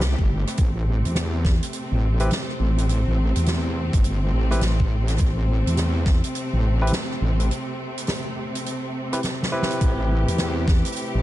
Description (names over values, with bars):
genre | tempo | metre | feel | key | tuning
glitch hop | 104 BPM | 4/4 | swing 63% on 16ths | A minor | A4 = 440 Hz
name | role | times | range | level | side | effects
bright studio string section | sustained chords | 0.0-11.2 s | C3 to G4 | -29 LUFS | equal | sidechain pumping
wobble bass | bass | 0.0-11.2 s | G1 to E2 | -21 LUFS | equal | chorus, tube saturation
soft-mallet drum kit | drums | 0.0-11.1 s | crash cymbal, hi-hat, rim click, snare drum | -29 LUFS | right 1 dB | none
electronic kick drum | drums | 0.2-6.2, 9.8-10.8 s | none | -20 LUFS | equal | none
barky tine electric piano | stabs | 2.2-11.2 s | C4 to B4 | -29 LUFS | equal | sidechain pumping, ping-pong delay
room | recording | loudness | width
small room ambience | nothing above 10.6 kHz | -20 LUFS | side -15 dB against mid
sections
0.0-11.2 A section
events
break 7.5-9.8; drum fill 9.2-9.8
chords
0.0 Am7